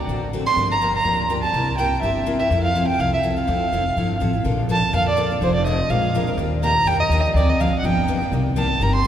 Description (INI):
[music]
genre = acoustic string swing (jazz manouche)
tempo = 248 BPM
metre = 4/4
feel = swing 55% on 8ths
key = F major, Bb major from 4.5 s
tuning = A4 = 441 Hz
[part]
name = dark violin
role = melody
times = 0.0-9.1 s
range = C5 to C6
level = -21 LUFS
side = right 2 dB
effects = none
[part]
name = picked steel-string acoustic guitar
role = accompaniment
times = 0.1-9.1 s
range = C3 to Bb4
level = -24 LUFS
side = left 2 dB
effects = none
[part]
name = upright bass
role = bass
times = 0.1-9.1 s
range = F1 to F2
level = -23 LUFS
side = equal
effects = none
[sound]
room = wet cathedral reverb, RT60 4.9 s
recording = recorded in a church or concert hall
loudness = -18 LUFS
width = side -10 dB against mid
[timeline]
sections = 0.0-4.5 A section; 4.5-9.1 B section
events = none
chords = 0.0 D7; 0.6 Gm7; 1.5 C7; 2.5 Fmaj7; 4.5 Bbmaj7; 5.4 Fm7; 5.9 Bb7; 6.4 Ebmaj7; 7.4 Dm7b5; 7.8 G7; 8.3 Cm7